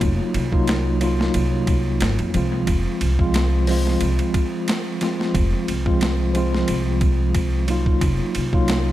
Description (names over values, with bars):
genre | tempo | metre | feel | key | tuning
trip hop | 90 BPM | 4/4 | swing 54% on 16ths | unclear | A4 = 437 Hz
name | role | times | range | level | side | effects
tine electric piano | accompaniment | 0.0-8.9 s | F3 to F4 | -22 LUFS | equal | medium stereo tremolo, analog delay
upright bass | bass | 0.0-8.9 s | F1 to F2 | -22 LUFS | equal | none
boom bap sampler-style drum kit | drums | 0.0-8.9 s | hi-hat, kick drum, ride cymbal, snare drum | -23 LUFS | equal | small room ambience, analog delay
room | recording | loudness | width
digital ambience | echo-heavy mix | -18 LUFS | side -14 dB against mid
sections
0.0-8.9 A section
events
none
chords
0.0 Ebmadd9/F